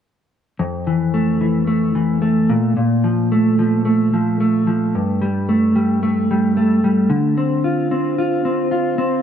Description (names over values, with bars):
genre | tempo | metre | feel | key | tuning
indie pop | 111 BPM | 4/4 | straight | F major | A4 = 440 Hz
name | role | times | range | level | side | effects
mellow electric guitar | accompaniment | 0.6-9.2 s | F2 to F4 | -15 LUFS | equal | lush chorus, vibrato effect
room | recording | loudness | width
light reverb | none | -15 LUFS | side -8 dB against mid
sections
0.6-9.2 A section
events
none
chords
0.6 Fmaj7; 2.5 Bb5; 4.9 Gsus2; 7.1 Dm7